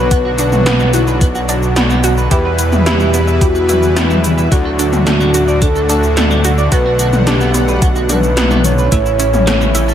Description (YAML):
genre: synthwave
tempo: 109 BPM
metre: 4/4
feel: straight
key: B minor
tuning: A4 = 440 Hz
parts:
  - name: soft octave-layered synth lead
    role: melody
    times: 0.0-9.9 s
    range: E4 to C#5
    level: -17 LUFS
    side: left 1 dB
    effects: chorus, phaser, ping-pong delay
  - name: soft supersaw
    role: sustained chords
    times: 0.0-9.9 s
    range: A2 to F#5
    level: -20 LUFS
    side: equal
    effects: sidechain pumping
  - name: clean electric guitar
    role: riff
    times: 0.0-9.9 s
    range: A3 to E5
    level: -23 LUFS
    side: right 4 dB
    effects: lush chorus, digital delay
  - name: fat analog bass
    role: bass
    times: 0.0-9.9 s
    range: A1 to E2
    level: -15 LUFS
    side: equal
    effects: tube saturation, sidechain pumping
  - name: wide unison pluck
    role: arpeggios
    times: 0.1-9.9 s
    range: A3 to G4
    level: -22 LUFS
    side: right 3 dB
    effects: digital delay
  - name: 80s electronic pad drums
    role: drums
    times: 0.1-9.9 s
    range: cabasa, hi-hat, snare drum, toms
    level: -17 LUFS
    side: left 1 dB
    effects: gated reverb on snare and toms, overdrive, gated reverb
  - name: electronic kick drum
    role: drums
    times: 0.1-9.0 s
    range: none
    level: -14 LUFS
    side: equal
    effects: overdrive
room: light reverb, digital ambience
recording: none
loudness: -10 LUFS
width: side -10 dB against mid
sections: 0.0-9.9 A section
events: none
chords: 0.0 Bm; 2.3 Em; 4.5 D; 6.7 Bm; 8.9 A